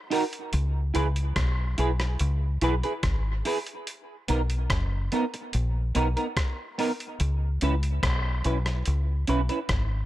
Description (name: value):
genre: dub reggae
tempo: 72 BPM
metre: 4/4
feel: straight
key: unclear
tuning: A4 = 442 Hz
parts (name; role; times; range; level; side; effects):
- semi-hollow electric guitar; accompaniment; 0.1-9.6 s; B3 to B4; -29 LUFS; right 2 dB; analog chorus, dub echo
- dusty soul sampler-style drum kit; drums; 0.1-9.9 s; hi-hat, kick drum, rim click; -30 LUFS; equal; none
- deep dub fingered electric bass; bass; 0.5-10.1 s; F#1 to C#2; -25 LUFS; equal; none
room: light reverb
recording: none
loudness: -24 LUFS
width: side -15 dB against mid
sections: 0.0-10.1 A section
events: none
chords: 0.0 Bmaj7 (rootless); 0.5 C#m7; 3.9 Bmaj7; 7.2 C#m7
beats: | 0.53 1.36 2.19 3.03 | 3.86 4.69 5.53 6.36 | 7.19 8.03 8.86 9.69